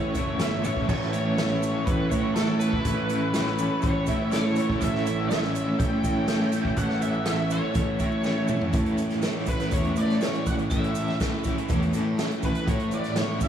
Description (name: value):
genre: psychedelic rock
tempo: 122 BPM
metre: 4/4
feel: straight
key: A major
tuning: A4 = 441 Hz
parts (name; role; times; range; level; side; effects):
- octave-fuzz lead guitar; melody; 0.0-13.5 s; A4 to G5; -31 LUFS; equal; wah, distortion, tape echo
- combo organ; sustained chords; 0.0-8.7 s; A3 to E5; -38 LUFS; right 2 dB; none
- overdriven electric guitar; riff; 0.0-13.5 s; A2 to E4; -28 LUFS; equal; tremolo
- fuzz picked electric bass; bass; 0.0-12.9 s; F#1 to A2; -28 LUFS; right 1 dB; overdrive
- vintage drum kit; drums; 0.1-13.5 s; crash cymbal, hi-hat, kick drum, snare drum, toms; -29 LUFS; right 1 dB; none
- maracas; percussion; 0.1-13.5 s; none; -48 LUFS; right 14 dB; none
- tanpura; drone; 8.7-13.5 s; A2 to A3; -35 LUFS; equal; none
room: moderate huge ambient reverb, RT60 4.4 s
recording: dreamy mix soaked in reverb, small room reverb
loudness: -23 LUFS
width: side -9 dB against mid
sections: 0.0-8.7 A section; 8.7-13.5 B section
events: drum fill 8.2-8.7; lead electric guitar solo 8.7-13.5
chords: 0.0 A